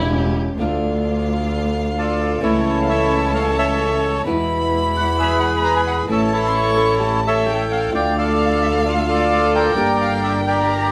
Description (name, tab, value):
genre	tango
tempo	131 BPM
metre	4/4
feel	rubato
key	D harmonic minor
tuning	A4 = 441 Hz
part	hollow-body jazz guitar	second line	0.0-0.6, 6.8-8.5 s	C#4 to A4	-29 LUFS	equal	none
part	warm violin	second line	0.0-10.9 s	E4 to C#6	-28 LUFS	equal	none
part	warm studio string section	stabs	0.0-10.9 s	G#3 to G4	-34 LUFS	equal	none
part	clear double bass	bass	0.0-10.9 s	E1 to E2	-25 LUFS	equal	none
part	flamenco guitar	accompaniment	0.6-10.9 s	B2 to G4	-26 LUFS	equal	none
part	bandoneon	melody	2.0-10.9 s	E4 to Bb5	-21 LUFS	equal	none
room	wet studio reverb, RT60 0.7 s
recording	band playing live in one room, vinyl crackle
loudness	-18 LUFS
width	mono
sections	0.6-10.9 A section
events	none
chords	0.0 A7; 0.6 Dm; 2.4 A/C#; 4.3 E; 6.1 A; 7.9 Dm; 9.8 Gm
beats	0.14 | 0.60 1.05 1.51 1.97 | 2.43 2.89 3.34 3.80 | 4.25 4.71 5.17 5.63 | 6.08 6.54 7.00 7.46 | 7.92 8.38 8.84 9.30 | 9.75 10.21 10.67